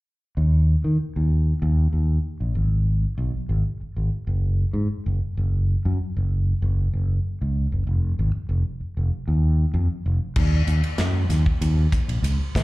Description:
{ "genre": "electric jazz fusion", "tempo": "96 BPM", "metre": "4/4", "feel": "straight", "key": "Eb minor", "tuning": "A4 = 440 Hz", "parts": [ { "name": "fretless electric bass", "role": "bass", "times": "0.4-12.6 s", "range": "F1 to Eb3", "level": "-20 LUFS", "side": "equal", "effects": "none" }, { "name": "modern studio drum kit", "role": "drums", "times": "10.4-12.6 s", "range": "crash cymbal, hi-hat, kick drum, ride cymbal, snare drum", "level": "-24 LUFS", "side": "equal", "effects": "none" } ], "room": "little or no reverb", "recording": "live gig heard through the venue's PA, club reverb", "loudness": "-20 LUFS", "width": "side -20 dB against mid", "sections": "0.4-10.4 A section; 10.4-12.6 B section", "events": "none", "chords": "none", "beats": "| 0.36 0.99 1.62 2.25 | 2.87 3.50 4.12 4.75 | 5.37 6.00 6.62 7.25 | 7.88 8.50 9.12 9.75 | 10.37 11.00 11.62 12.25" }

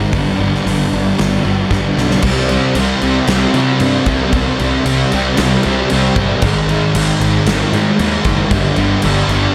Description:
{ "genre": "rock, shoegaze and dream pop", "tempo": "115 BPM", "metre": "4/4", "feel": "straight", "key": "unclear", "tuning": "A4 = 441 Hz", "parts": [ { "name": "crunchy overdriven guitar", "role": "riff", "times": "0.0-2.2 s", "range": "G2 to Eb4", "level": "-24 LUFS", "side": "equal", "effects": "reverse reverb" }, { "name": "thick fuzz guitar", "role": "riff", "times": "0.0-9.5 s", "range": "G2 to C4", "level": "-18 LUFS", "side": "equal", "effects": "distortion, analog chorus" }, { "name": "fuzz picked electric bass", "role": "bass", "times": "0.0-9.5 s", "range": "F#1 to C3", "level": "-21 LUFS", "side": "equal", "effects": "overdrive" }, { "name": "huge arena drum kit", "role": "drums", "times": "0.1-9.4 s", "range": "crash cymbal, hi-hat, kick drum, snare drum", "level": "-22 LUFS", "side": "equal", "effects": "none" }, { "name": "crunchy overdriven guitar", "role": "riff", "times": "2.2-9.5 s", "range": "G2 to C4", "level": "-22 LUFS", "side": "equal", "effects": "harmonic tremolo" } ], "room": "studio reverb", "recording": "none", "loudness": "-14 LUFS", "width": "mono", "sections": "0.0-2.2 A section; 2.2-9.5 B section", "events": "drum fill 1.7-2.2", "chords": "0.1 G; 2.2 C5; 6.4 Ab5; 8.5 G5", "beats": "| 0.13 0.66 1.18 1.71 | 2.24 2.76 3.29 3.81 | 4.33 4.86 5.38 5.91 | 6.43 6.95 7.47 8.00 | 8.52 9.05" }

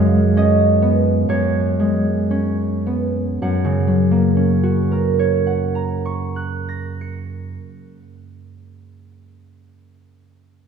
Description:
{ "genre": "classical, solo harp piece", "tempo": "51-69 BPM", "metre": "4/4", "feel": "rubato", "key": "F# major", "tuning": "A4 = 440 Hz", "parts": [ { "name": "concert harp", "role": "solo", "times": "0.0-9.3 s", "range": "F#2 to C#7", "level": "-16 LUFS", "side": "right 1 dB", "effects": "none" } ], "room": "wet concert hall reverb, RT60 2.4 s", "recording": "recorded in a church or concert hall", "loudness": "-16 LUFS", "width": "side -7 dB against mid", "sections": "0.0-3.4 A section; 3.4-7.8 B section", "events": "slowing down 0.0-3.4", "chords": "0.0 C#7/F#; 3.4 F#", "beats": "0.37 1.30 2.31 | 3.44 4.54 5.63 6.72" }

